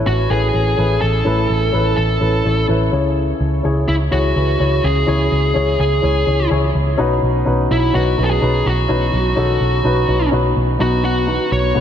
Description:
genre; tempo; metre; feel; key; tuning
piano-driven pop; 126 BPM; 4/4; straight; unclear; A4 = 439 Hz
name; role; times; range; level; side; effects
dark upright piano; accompaniment; 0.0-11.8 s; A2 to C#5; -19 LUFS; left 2 dB; none
vintage muted picked electric bass; bass; 0.0-11.8 s; A1 to C#2; -18 LUFS; right 1 dB; none
fuzz lead guitar; melody; 0.1-11.8 s; E4 to C#5; -20 LUFS; equal; distortion, ping-pong delay
room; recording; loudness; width
moderate cathedral reverb, RT60 5.0 s; dreamy mix soaked in reverb; -14 LUFS; side -9 dB against mid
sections
0.0-10.8 A section; 10.8-11.8 B section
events
none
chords
0.0 Aadd9; 2.9 C#m; 7.0 Badd9; 10.8 B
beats
0.30 0.78 | 1.26 1.73 2.21 2.69 | 3.17 3.64 4.12 4.60 | 5.08 5.55 6.03 6.51 | 6.99 7.46 7.94 8.42 | 8.89 9.37 9.85 10.33 | 10.80 11.28 11.76

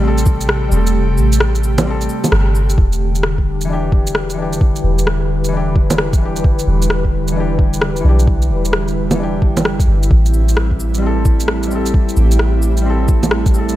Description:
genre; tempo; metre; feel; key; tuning
future garage; 131 BPM; 4/4; swing 64% on 16ths; E minor; A4 = 440 Hz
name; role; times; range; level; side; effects
felt-muted upright piano; accompaniment; 0.0-13.8 s; E3 to A4; -24 LUFS; left 4 dB; sidechain pumping, tape echo
airy breathy pad; sustained chords; 0.0-13.8 s; C3 to B4; -20 LUFS; equal; chorus, sidechain pumping
soft 808-style bass; bass; 0.0-13.8 s; E1 to B1; -16 LUFS; equal; none
electronic shaker, cabasa, rim click and bongos; drums; 0.2-13.8 s; none; -19 LUFS; right 1 dB; overdrive
electronic kick drum; drums; 0.3-13.5 s; none; -14 LUFS; equal; overdrive
room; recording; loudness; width
digital ambience; none; -13 LUFS; side -14 dB against mid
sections
0.0-2.8 A section; 2.8-13.8 B section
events
kick drops out 0.9-2.8; band accent 2.3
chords
0.0 Am7; 2.8 Em7; 10.1 Am7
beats
0.03 0.49 | 0.95 1.41 1.86 2.32 | 2.78 3.24 3.70 4.15 | 4.61 5.07 5.53 5.99 | 6.44 6.90 7.36 7.82 | 8.28 8.73 9.19 9.65 | 10.11 10.57 11.02 11.48 | 11.94 12.40 12.86 13.31

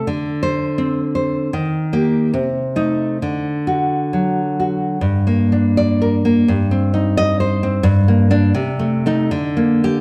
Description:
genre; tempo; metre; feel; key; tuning
romantic piece for solo classical guitar; 64-89 BPM; 2/4; rubato; G minor; A4 = 442 Hz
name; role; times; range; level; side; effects
nylon-string guitar; solo; 0.0-10.0 s; G2 to Eb5; -17 LUFS; equal; none
room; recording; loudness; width
wet recital hall reverb, RT60 1.3 s; none; -17 LUFS; mono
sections
0.0-5.0 A section; 5.0-10.0 B section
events
none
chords
0.1 Csus2/D; 1.5 Eb; 2.3 Adim/C; 3.2 D; 5.0 Gm; 6.5 Cm/G; 7.8 Gm; 8.5 Adim/C; 9.3 Gm/D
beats
| 0.08 0.80 | 1.53 2.34 | 3.22 4.13 | 5.01 5.76 | 6.47 7.15 | 7.83 8.54 | 9.31

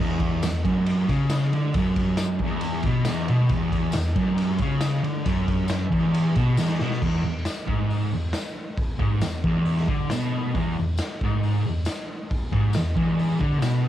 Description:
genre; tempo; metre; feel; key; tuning
garage rock duo or trio; 136 BPM; 4/4; straight; E mixolydian; A4 = 440 Hz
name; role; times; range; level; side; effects
fuzz guitar; riff; 0.0-13.9 s; E2 to D3; -22 LUFS; equal; distortion, cassette tape
raw garage drum kit; drums; 0.2-13.7 s; crash cymbal, hi-hat, kick drum, ride cymbal, snare drum; -28 LUFS; equal; cassette tape
tambourine; percussion; 0.4-13.7 s; none; -40 LUFS; left 8 dB; none
room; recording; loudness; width
light reverb; home recording on cassette; -21 LUFS; side -12 dB against mid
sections
0.0-7.0 A section; 7.0-13.9 B section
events
drum fill 6.6-7.0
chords
none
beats
0.43 0.87 1.31 | 1.75 2.19 2.62 3.06 | 3.50 3.94 4.38 4.82 | 5.26 5.70 6.14 6.58 | 7.02 7.46 7.90 8.34 | 8.78 9.22 9.66 10.10 | 10.54 10.98 11.42 11.86 | 12.30 12.74 13.18 13.62

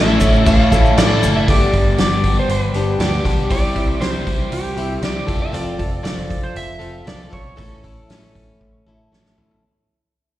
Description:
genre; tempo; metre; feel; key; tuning
folk rock and heartland rock; 118 BPM; 4/4; straight; unclear; A4 = 440 Hz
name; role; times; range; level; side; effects
electric slide guitar; melody; 0.0-9.1 s; G4 to F5; -23 LUFS; right 3 dB; slapback echo, analog delay
picked plugged-in swing-style acoustic guitar; accompaniment; 0.0-9.6 s; G2 to A4; -22 LUFS; left 4 dB; slapback echo
overdriven semi-hollow guitar; riff; 0.0-5.5 s; F2 to G4; -24 LUFS; equal; phaser, slapback echo
picked electric bass; bass; 0.0-9.6 s; F1 to D2; -21 LUFS; equal; none
loose indie drum kit; drums; 0.2-9.6 s; crash cymbal, hi-hat, kick drum, snare drum, toms; -19 LUFS; equal; none
tube shaker; percussion; 0.2-1.3 s; none; -34 LUFS; right 3 dB; none
room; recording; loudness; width
small room ambience; live gig heard through the venue's PA, recital hall reverb; -14 LUFS; side -14 dB against mid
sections
0.0-1.5 A section; 1.5-9.6 B section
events
fade-out 1.5-9.6; drum fill 8.6-9.6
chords
0.0 A; 1.5 G; 3.5 C; 5.3 F; 7.6 A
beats
0.46 0.97 | 1.47 1.98 2.49 2.99 | 3.50 4.01 4.52 5.03 | 5.54 6.05 6.56 7.07 | 7.58 8.09 8.60 9.11

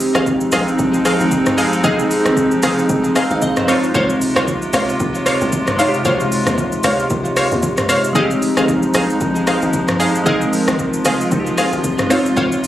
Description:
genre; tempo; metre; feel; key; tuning
amapiano; 114 BPM; 4/4; swing 58% on 16ths; F minor; A4 = 443 Hz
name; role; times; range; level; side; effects
glassy digital keys; accompaniment; 0.0-12.7 s; C3 to F5; -19 LUFS; equal; chorus
hollow soft pad; sustained chords; 0.0-12.7 s; C3 to F4; -20 LUFS; equal; chorus, sidechain pumping
hollow log drum bass; bass; 0.0-12.7 s; F1 to Eb2; -25 LUFS; equal; none
deep house drum kit; drums; 0.0-12.7 s; hi-hat, kick drum, rim click, shaker, toms; -21 LUFS; equal; none
punchy chord stab; stabs; 0.1-12.5 s; Ab4 to F5; -20 LUFS; equal; chorus, digital delay
room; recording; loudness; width
moderate scoring stage reverb, RT60 1.7 s, digital ambience; recorded on a phone in the room, club reverb, compression; -14 LUFS; side -13 dB against mid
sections
0.0-12.7 A section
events
none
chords
0.0 Fm7; 3.7 Dbmaj7; 8.2 Fm7; 12.1 Dbmaj7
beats
0.26 0.79 1.31 | 1.84 2.37 2.89 3.42 | 3.95 4.47 5.00 5.53 | 6.05 6.58 7.10 7.63 | 8.16 8.68 9.21 9.73 | 10.26 10.79 11.31 11.84 | 12.37

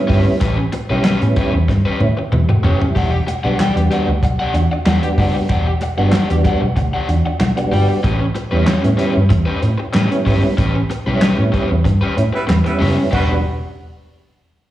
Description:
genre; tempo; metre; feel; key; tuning
funk; 94 BPM; 4/4; straight; E dorian; A4 = 440 Hz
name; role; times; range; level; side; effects
mellow tonewheel organ; stabs; 0.0-13.4 s; G3 to G4; -20 LUFS; right 2 dB; chorus vibrato, slow rotary speaker, slapback echo
overdriven electric guitar; accompaniment; 0.1-13.3 s; C#4 to G5; -22 LUFS; left 3 dB; slapback echo
vintage muted fingered electric bass; bass; 0.1-13.4 s; E1 to A2; -17 LUFS; equal; none
warm soul drum kit; drums; 0.1-13.3 s; crash cymbal, handclaps, hi-hat, kick drum, snare drum, toms; -18 LUFS; equal; slapback echo
congas; percussion; 0.1-13.4 s; none; -27 LUFS; right 3 dB; slapback echo
mellow horn section; second line; 12.3-13.4 s; G3 to B4; -23 LUFS; right 1 dB; slapback echo
room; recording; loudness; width
light reverb; live gig heard through the venue's PA, recital hall reverb, small room ambience; -14 LUFS; side -14 dB against mid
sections
0.0-13.1 A section; 13.1-14.7 B section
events
drum fill 1.7-3.0; band accent 10.6-13.1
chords
0.0 A9; 3.0 Em9; 8.0 A9; 13.1 Em9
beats
| 0.42 1.05 1.69 2.32 | 2.96 3.59 4.23 4.86 | 5.50 6.13 6.77 7.41 | 8.04 8.68 9.31 9.95 | 10.58 11.22 11.86 12.49 | 13.13

